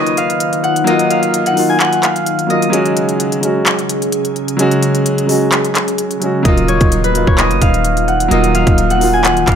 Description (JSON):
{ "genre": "hip hop, trap", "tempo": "129 BPM", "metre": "4/4", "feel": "half-time", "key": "Eb minor", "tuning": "A4 = 440 Hz", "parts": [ { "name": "Celtic harp", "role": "melody", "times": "0.0-9.6 s", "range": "Cb5 to Ab5", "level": "-16 LUFS", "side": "left 1 dB", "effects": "ping-pong delay" }, { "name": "warm concert grand piano", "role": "accompaniment", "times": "0.0-9.6 s", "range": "Gb3 to Gb4", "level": "-16 LUFS", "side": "right 1 dB", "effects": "none" }, { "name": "glassy FM pad", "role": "sustained chords", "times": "0.0-9.6 s", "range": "Db3 to Ab4", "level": "-20 LUFS", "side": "left 1 dB", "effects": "ensemble chorus, built-in reverb" }, { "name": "trap drum kit", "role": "drums", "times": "0.1-9.6 s", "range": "handclaps, hi-hat, kick drum", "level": "-16 LUFS", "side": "equal", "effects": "none" }, { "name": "hard-hitting 808-style bass", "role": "bass", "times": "6.5-9.6 s", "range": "Eb1 to Gb1", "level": "-17 LUFS", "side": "equal", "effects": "none" } ], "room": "light reverb, digital ambience", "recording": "none", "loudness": "-11 LUFS", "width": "side -8 dB against mid", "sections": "0.0-9.6 A section", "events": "break 0.0-6.5", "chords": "0.0 Ebmadd9; 2.7 Dbsus4; 6.5 Ebmadd9" }